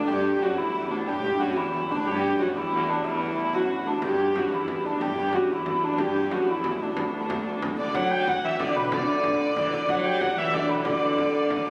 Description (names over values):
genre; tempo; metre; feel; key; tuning
medieval dance; 123 BPM (dotted quarters); 6/8; straight; D major; A4 = 440 Hz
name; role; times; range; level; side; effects
dark hurdy-gurdy; melody; 0.0-11.7 s; D4 to G5; -28 LUFS; equal; none
lute; second line; 0.0-11.7 s; D2 to G3; -33 LUFS; equal; none
rich viola da gamba; second line; 0.0-11.7 s; D2 to F#3; -32 LUFS; equal; none
pipe organ, sparkling flutes; drone; 0.0-11.7 s; D2; -44 LUFS; equal; none
frame drum; percussion; 4.0-11.7 s; none; -39 LUFS; equal; none
room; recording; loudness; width
wet cathedral reverb, RT60 4.8 s; recorded on a phone in the room, studio reverb, compression; -25 LUFS; mono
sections
0.1-7.9 A section; 7.9-11.7 B section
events
none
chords
none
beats
| 0.08 0.58 | 1.07 1.57 | 2.06 2.55 | 3.05 3.54 | 4.03 4.52 | 5.01 5.50 | 5.99 6.48 | 6.97 7.46 | 7.94 8.43 | 8.92 9.40 | 9.89 10.37 | 10.86 11.34